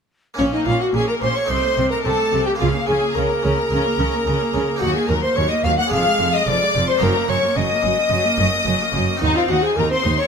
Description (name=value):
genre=classical, baroque-style concerto movement with solo episodes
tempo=109 BPM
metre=4/4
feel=straight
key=Bb minor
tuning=A4 = 440 Hz
part: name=harpsichord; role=accompaniment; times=0.3-10.3 s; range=Eb2 to A4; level=-27 LUFS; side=equal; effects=none
part: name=mellow hollow tenor recorder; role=melody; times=0.4-10.3 s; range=Db4 to Gb5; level=-22 LUFS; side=left 1 dB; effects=none
part: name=rich symphonic violin section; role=melody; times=0.4-10.3 s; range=Db5 to Gb6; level=-24 LUFS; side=left 2 dB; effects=none
part: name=rich chamber violin section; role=second line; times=0.4-10.3 s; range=Db4 to Gb5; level=-24 LUFS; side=left 5 dB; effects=none
part: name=rich chamber viola section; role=accompaniment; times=0.4-10.3 s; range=F3 to Eb4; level=-27 LUFS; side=right 2 dB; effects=none
part: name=rich chamber cello section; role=bass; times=0.4-10.1 s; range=Eb2 to Db3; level=-25 LUFS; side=right 3 dB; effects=none
part: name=rich chamber double bass section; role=bass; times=0.4-10.1 s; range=F1 to Eb2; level=-26 LUFS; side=right 3 dB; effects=none
room=moderate recital hall reverb, RT60 1.7 s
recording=none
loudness=-16 LUFS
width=side -6 dB against mid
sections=0.4-10.3 A section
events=none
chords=0.4 Bbm; 1.5 Adim/C; 2.6 Bbm/Db; 4.8 Ebm; 5.9 Ddim/F; 7.0 Ebm/Gb; 9.2 Cdim/Eb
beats=| 0.38 0.94 1.50 2.05 | 2.60 3.15 3.71 4.26 | 4.81 5.37 5.92 6.47 | 7.02 7.57 8.12 8.67 | 9.22 9.77